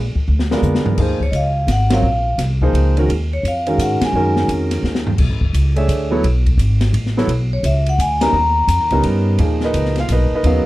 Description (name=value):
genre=modal jazz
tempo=171 BPM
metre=3/4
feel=swing 64% on 8ths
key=unclear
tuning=A4 = 438 Hz
part: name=upright bass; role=bass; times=0.0-10.6 s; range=F#1 to Ab2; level=-17 LUFS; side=equal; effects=none
part: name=open jazz drum kit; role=drums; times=0.2-10.5 s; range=crash cymbal, hi-hat, kick drum, ride cymbal, snare drum, toms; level=-23 LUFS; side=left 1 dB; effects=none
part: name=clear concert grand piano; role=accompaniment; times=0.5-10.7 s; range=A#2 to E#5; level=-19 LUFS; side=right 1 dB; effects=none
part: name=vibraphone with medium mallets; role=melody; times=1.2-4.5, 7.5-9.0 s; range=Db5 to Bb5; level=-19 LUFS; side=left 1 dB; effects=none
room=light reverb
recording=dark, warm production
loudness=-14 LUFS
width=side -17 dB against mid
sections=1.0-9.4 A section; 9.4-10.7 B section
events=drum fill 0.3-1.0, 4.8-5.2; band accent 1.9, 4.0, 8.2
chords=0.0 A#7b9; 1.0 Ebm11; 5.2 Bm11; 8.3 Eb7b13; 9.4 G#m9